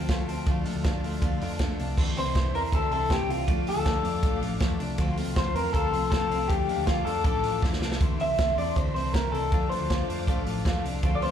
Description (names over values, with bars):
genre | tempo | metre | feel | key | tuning
jangly indie pop | 159 BPM | 4/4 | straight | D minor | A4 = 441 Hz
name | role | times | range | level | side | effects
picked steel-string acoustic guitar | accompaniment | 0.0-11.3 s | D3 to F4 | -36 LUFS | right 8 dB | slapback echo
warm symphonic string section | sustained chords | 0.0-11.3 s | F4 to D6 | -40 LUFS | left 2 dB | none
twelve-string electric guitar | arpeggios | 0.0-11.3 s | E3 to D4 | -33 LUFS | left 7 dB | spring reverb, slapback echo
hollow-body short-scale picked electric bass | bass | 0.0-11.3 s | A1 to F2 | -32 LUFS | right 1 dB | none
vintage drum kit | drums | 0.1-11.3 s | crash cymbal, hi-hat, kick drum, ride cymbal, snare drum | -28 LUFS | right 1 dB | none
electric guitar through a small old amp | melody | 2.2-11.3 s | F4 to E5 | -28 LUFS | left 2 dB | slapback echo, digital delay
room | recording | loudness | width
studio reverb | live gig heard through the venue's PA, club reverb | -24 LUFS | side -9 dB against mid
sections
0.0-2.0 A section; 2.0-11.3 B section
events
drum fill 7.6-8.0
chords
0.5 Dm; 2.0 Am; 3.5 Dm; 5.0 F; 6.5 Dm; 8.0 Am; 9.5 Dm